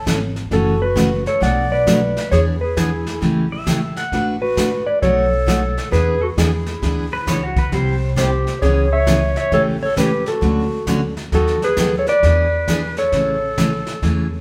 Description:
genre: country, western swing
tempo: 133 BPM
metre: 4/4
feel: swing 65% on 8ths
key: A major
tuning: A4 = 439 Hz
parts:
  - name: clean lap steel guitar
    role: melody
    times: 0.0-14.4 s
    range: G#4 to F#5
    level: -22 LUFS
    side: equal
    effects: none
  - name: pedal steel guitar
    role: second line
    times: 0.0, 3.5-4.3, 7.1-8.1 s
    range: F#4 to F#5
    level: -28 LUFS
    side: equal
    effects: none
  - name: picked steel-string acoustic guitar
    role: accompaniment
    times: 0.1-14.3 s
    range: B2 to B4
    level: -23 LUFS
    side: equal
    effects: none
  - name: upright bass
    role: bass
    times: 0.1-14.4 s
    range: F#1 to E2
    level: -24 LUFS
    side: equal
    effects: none
  - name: jazz brush drum kit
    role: drums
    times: 0.1-14.4 s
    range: brushed snare drum, hi-hat, kick drum, snare drum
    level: -28 LUFS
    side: equal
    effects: none
  - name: warm clarinet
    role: second line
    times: 0.5-14.4 s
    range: E4 to D5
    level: -27 LUFS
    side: equal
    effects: none
room: wet large studio reverb, RT60 1.4 s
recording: band playing live in one room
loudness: -18 LUFS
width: mono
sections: 0.0-14.4 A section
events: none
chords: 0.0 A; 0.5 F#m7; 1.4 Bm7; 2.3 E7; 3.2 A7; 4.1 D6/A; 5.0 B7; 5.9 E7; 7.7 C; 8.6 C#m7; 9.5 A7; 10.4 Dmaj7; 11.3 B7/D#; 12.2 E7; 13.1 Amaj7

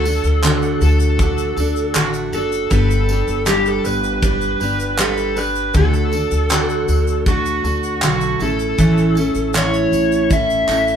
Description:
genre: acoustic pop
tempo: 79 BPM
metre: 4/4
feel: straight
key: D major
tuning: A4 = 440 Hz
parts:
  - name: overdriven slide guitar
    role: melody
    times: 0.0-11.0 s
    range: F#4 to E5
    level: -20 LUFS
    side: equal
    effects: none
  - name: picked steel-string acoustic guitar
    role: accompaniment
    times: 0.0-11.0 s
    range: A2 to B4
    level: -20 LUFS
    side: right 1 dB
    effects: none
  - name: upright bass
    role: bass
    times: 0.0-11.0 s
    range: F#1 to D2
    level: -20 LUFS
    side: left 1 dB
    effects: none
  - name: modern studio drum kit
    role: drums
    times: 0.1-10.9 s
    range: handclaps, kick drum, tambourine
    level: -21 LUFS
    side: equal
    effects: none
  - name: tube shaker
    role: percussion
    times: 0.2-11.0 s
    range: none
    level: -35 LUFS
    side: left 6 dB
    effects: none
room: moderate studio reverb, RT60 0.6 s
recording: band playing live in one room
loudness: -15 LUFS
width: side -8 dB against mid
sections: 0.0-11.0 A section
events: none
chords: 0.0 D; 2.7 G; 5.7 D; 8.4 A

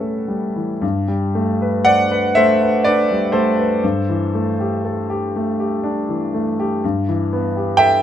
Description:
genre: classical, impressionist solo piano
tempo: 55-64 BPM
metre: 3/4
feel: rubato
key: G major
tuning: A4 = 442 Hz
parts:
  - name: clear grand piano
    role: solo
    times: 0.0-8.0 s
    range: G2 to G5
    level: -16 LUFS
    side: equal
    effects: none
room: light reverb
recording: close, detailed microphones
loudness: -16 LUFS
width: side -10 dB against mid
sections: 0.8-8.0 A section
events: none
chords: 0.0 A9; 0.8 Gadd9; 3.8 D11/G; 6.8 G6

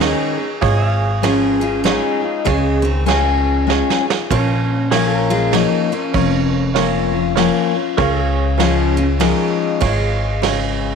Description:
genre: honky-tonk and classic country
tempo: 98 BPM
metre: 3/4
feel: swing 62% on 8ths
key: unclear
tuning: A4 = 437 Hz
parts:
  - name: picked steel-string acoustic guitar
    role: melody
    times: 0.0-10.9 s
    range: Db3 to F4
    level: -21 LUFS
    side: equal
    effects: none
  - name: bright grand piano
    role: accompaniment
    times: 0.0-10.9 s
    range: Eb4 to Db5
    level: -23 LUFS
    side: right 11 dB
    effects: none
  - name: picked steel-string acoustic guitar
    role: accompaniment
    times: 0.0-10.9 s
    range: F2 to Ab4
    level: -20 LUFS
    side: left 12 dB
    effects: none
  - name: pedal steel guitar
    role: sustained chords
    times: 0.0-10.9 s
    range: Ab4 to F5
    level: -26 LUFS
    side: left 1 dB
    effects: none
  - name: upright bass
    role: bass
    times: 0.0-10.9 s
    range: F1 to Eb2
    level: -20 LUFS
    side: right 1 dB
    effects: none
  - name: vintage brush drum kit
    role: drums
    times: 0.0-10.6 s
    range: kick drum, ride cymbal, snare drum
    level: -23 LUFS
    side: right 7 dB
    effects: none
room: light reverb, studio ambience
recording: 1960s-style stereo with parts hard left and right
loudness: -14 LUFS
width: side -6 dB against mid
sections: 0.0-10.9 A section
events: drum fill 3.7-4.3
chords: 0.0 Absus2; 0.6 Db/Ab; 4.3 Bbm; 8.0 Db

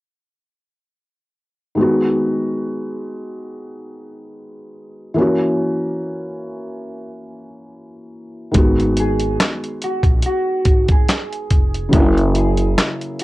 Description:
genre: lo-fi hip hop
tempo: 71 BPM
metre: 4/4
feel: swing 56% on 16ths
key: G# minor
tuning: A4 = 444 Hz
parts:
  - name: felt-muted upright piano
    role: accompaniment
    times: 1.7-13.2 s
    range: C#3 to F#4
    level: -20 LUFS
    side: equal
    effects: cassette tape, low-pass filter
  - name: upright bass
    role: bass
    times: 8.5-12.7 s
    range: E#1 to A#1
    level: -20 LUFS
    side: equal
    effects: none
  - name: dusty soul sampler-style drum kit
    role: drums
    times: 8.5-13.2 s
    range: handclaps, hi-hat, kick drum, snare drum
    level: -16 LUFS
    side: equal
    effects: cassette tape
  - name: mellow electric guitar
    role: melody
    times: 9.0-13.2 s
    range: F#4 to G#4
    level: -23 LUFS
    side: right 1 dB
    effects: lush chorus, low-pass filter, cassette tape
room: light reverb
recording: home recording on cassette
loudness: -15 LUFS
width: side -18 dB against mid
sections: 1.8-8.5 A section; 8.5-13.2 B section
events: none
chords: 1.8 G#m7; 5.2 F#7; 8.5 G#m7; 11.9 F#7

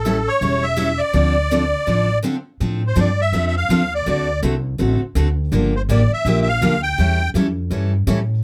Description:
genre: acoustic string swing (jazz manouche)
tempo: 165 BPM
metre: 4/4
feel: swing 61% on 8ths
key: D minor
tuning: A4 = 440 Hz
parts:
  - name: musette accordion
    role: melody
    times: 0.0-7.3 s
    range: A4 to G5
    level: -22 LUFS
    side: equal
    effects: none
  - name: upright bass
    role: bass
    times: 0.0-8.4 s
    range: E1 to A2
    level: -22 LUFS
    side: equal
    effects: none
  - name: picked steel-string acoustic guitar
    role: accompaniment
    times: 0.1-8.2 s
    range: D3 to A4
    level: -23 LUFS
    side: equal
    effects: none
room: little or no reverb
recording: close, detailed microphones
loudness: -19 LUFS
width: mono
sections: 0.0-2.6 A section; 2.6-8.4 B section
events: break 2.2-2.6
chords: 0.0 A7; 1.1 Dm7; 2.6 F6; 4.1 D7; 5.5 Gm7; 7.0 A7

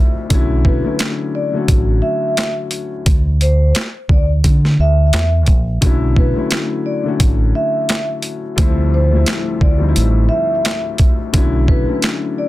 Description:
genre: hip hop, boom-bap hip-hop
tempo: 87 BPM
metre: 4/4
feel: swing 57% on 16ths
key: unclear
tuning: A4 = 440 Hz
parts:
  - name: dark grand piano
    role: accompaniment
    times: 0.0-12.5 s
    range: D2 to F#4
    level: -20 LUFS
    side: left 4 dB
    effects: cassette tape, high-pass filter, low-pass filter
  - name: deep dub fingered electric bass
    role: bass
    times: 0.3-11.8 s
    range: A1 to D3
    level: -14 LUFS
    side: equal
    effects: none
  - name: boom bap sampler-style drum kit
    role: drums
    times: 0.3-12.2 s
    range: handclaps, hi-hat, kick drum, snare drum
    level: -15 LUFS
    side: equal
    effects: none
  - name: vibraphone with soft mallets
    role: melody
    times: 0.7-12.5 s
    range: B4 to E5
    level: -22 LUFS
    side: equal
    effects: high-pass filter, low-pass filter, ping-pong delay
room: little or no reverb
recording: dense, heavily limited modern master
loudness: -13 LUFS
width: side -16 dB against mid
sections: 0.0-12.5 A section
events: none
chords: 0.3 Bm11; 3.1 Dsus2; 5.8 Bm11; 8.6 Dm11; 11.3 Bm11

